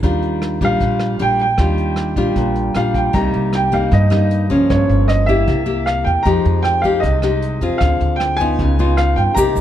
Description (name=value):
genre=bossa nova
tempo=154 BPM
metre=4/4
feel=straight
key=Eb major, C minor from 3.1 s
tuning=A4 = 440 Hz
part: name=nylon-string guitar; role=accompaniment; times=0.0-9.6 s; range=G2 to Ab4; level=-18 LUFS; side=left 1 dB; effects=none
part: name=upright bass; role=bass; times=0.0-9.6 s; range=G1 to G2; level=-19 LUFS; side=equal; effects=none
part: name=vintage brush drum kit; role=drums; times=0.0-9.6 s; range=hi-hat, kick drum, rim click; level=-25 LUFS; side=equal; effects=none
part: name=warm baby grand piano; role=melody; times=0.6-9.6 s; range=Db5 to Bb5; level=-20 LUFS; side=right 1 dB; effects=none
part: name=vibraphone with soft mallets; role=accompaniment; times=9.3-9.6 s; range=G4 to D6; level=-23 LUFS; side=right 5 dB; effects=none
part: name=egg shaker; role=percussion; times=9.4-9.6 s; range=none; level=-30 LUFS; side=right 8 dB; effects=none
room=light reverb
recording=none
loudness=-14 LUFS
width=side -11 dB against mid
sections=0.0-3.1 A section; 3.1-9.6 B section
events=none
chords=0.0 Ebmaj9; 3.1 Cm7; 4.7 Gm7b5; 5.5 C7; 6.3 Fm9; 7.8 Dm7b5; 8.6 Db9